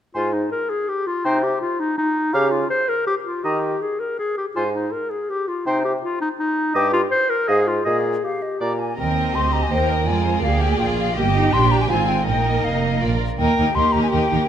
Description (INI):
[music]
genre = quick classical-period movement for symphony orchestra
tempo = 164 BPM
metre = 3/4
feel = straight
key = Eb major from 6.8 s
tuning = A4 = 440 Hz
[part]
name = clear clarinet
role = second line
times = 0.1-8.8 s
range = Eb4 to C5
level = -21 LUFS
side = left 2 dB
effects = none
[part]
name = hollow concert flute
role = second line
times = 0.1-14.5 s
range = Eb5 to C6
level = -24 LUFS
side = left 3 dB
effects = none
[part]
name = warm oboe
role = second line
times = 0.1-8.7 s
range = C5 to F5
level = -28 LUFS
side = right 2 dB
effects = none
[part]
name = warm bassoon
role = accompaniment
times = 0.1-8.9 s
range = G2 to Eb3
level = -25 LUFS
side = right 2 dB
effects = none
[part]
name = rich chamber violin section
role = melody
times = 9.0-14.5 s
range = Bb4 to Ab5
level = -30 LUFS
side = left 4 dB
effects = none
[part]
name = rich chamber violin section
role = second line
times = 9.0-14.5 s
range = Eb4 to C5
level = -27 LUFS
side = left 4 dB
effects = none
[part]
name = rich chamber viola section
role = accompaniment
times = 9.0-14.5 s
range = Ab3 to Eb4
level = -25 LUFS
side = right 1 dB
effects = none
[part]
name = clear chamber double bass section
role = bass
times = 9.0-14.4 s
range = F1 to F2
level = -21 LUFS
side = right 4 dB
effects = none
[part]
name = rich chamber cello section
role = bass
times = 9.0-14.5 s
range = F4 to Bb4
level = -26 LUFS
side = right 3 dB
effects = none
[sound]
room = moderate scoring stage reverb, RT60 1.9 s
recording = none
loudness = -18 LUFS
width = side -9 dB against mid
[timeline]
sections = 0.1-9.0 A section; 9.0-14.5 B section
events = none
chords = 0.1 N.C.; 1.2 Cm; 2.3 Bbm/Db; 3.4 Eb; 4.6 N.C.; 5.7 Cm; 6.8 Eb/G (rootless); 7.5 Fm7/Ab; 7.9 Eb/Bb; 9.0 Eb; 10.1 Bb7; 11.2 Eb/G; 11.9 Fm/Ab; 12.3 Bbsus4; 13.0 Bb; 13.4 Eb